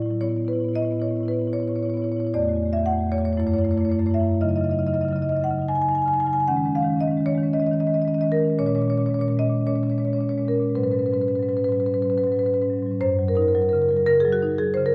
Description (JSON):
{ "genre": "classical, contemporary piece for solo marimba", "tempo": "114 BPM", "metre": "4/4", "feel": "rubato", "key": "A major, Gb major from 4.4 s", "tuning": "A4 = 444 Hz", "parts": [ { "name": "marimba with medium mallets", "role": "solo", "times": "0.0-14.9 s", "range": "E2 to Ab5", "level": "-22 LUFS", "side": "equal", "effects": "none" } ], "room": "wet recital hall reverb, RT60 1.6 s", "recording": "dark, warm production", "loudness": "-22 LUFS", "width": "mono", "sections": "0.0-13.0 A section; 13.0-14.9 B section", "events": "none", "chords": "0.2 Aadd9; 2.3 Esus24; 3.4 F#m7; 4.4 Dbsus24; 6.5 Eb7sus4; 8.6 Bbm7; 10.8 Abm7; 13.0 Gb6" }